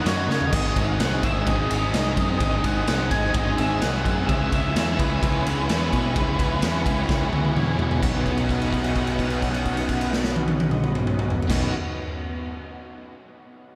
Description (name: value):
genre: rock, shoegaze and dream pop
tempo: 128 BPM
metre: 4/4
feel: straight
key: B major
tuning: A4 = 441 Hz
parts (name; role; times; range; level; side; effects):
- octave-fuzz lead guitar; melody; 0.0-7.5 s; B4 to G#5; -32 LUFS; equal; distortion, tape echo
- chorused pulse-width pad; sustained chords; 0.0-11.7 s; C#4 to D#6; -35 LUFS; equal; none
- biting overdriven guitar; riff; 0.0-11.7 s; G#2 to G#4; -32 LUFS; equal; reverse reverb
- raw garage guitar; riff; 0.0-11.7 s; G#2 to F#4; -33 LUFS; equal; overdrive, ensemble chorus
- growling fingered electric bass; bass; 0.0-11.7 s; G#1 to C#3; -29 LUFS; equal; overdrive
- raw garage drum kit; drums; 0.1-11.6 s; crash cymbal, kick drum, ride cymbal, snare drum, toms; -27 LUFS; equal; none
room: wet huge ambient reverb, RT60 8.3 s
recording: dreamy mix soaked in reverb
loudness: -23 LUFS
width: mono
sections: 0.0-8.0 A section; 8.0-11.8 B section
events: drum fill 0.3, 7.1-8.0; held note 8.0-11.5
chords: 0.0 D#m; 0.5 G#; 4.3 C#m7; 8.0 Badd9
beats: 0.06 | 0.53 0.99 1.46 1.93 | 2.40 2.87 3.34 3.81 | 4.28 4.75 5.22 5.68 | 6.15 6.62 7.09 7.56 | 8.03 8.49 8.96 9.43 | 9.90 10.37 10.84 11.30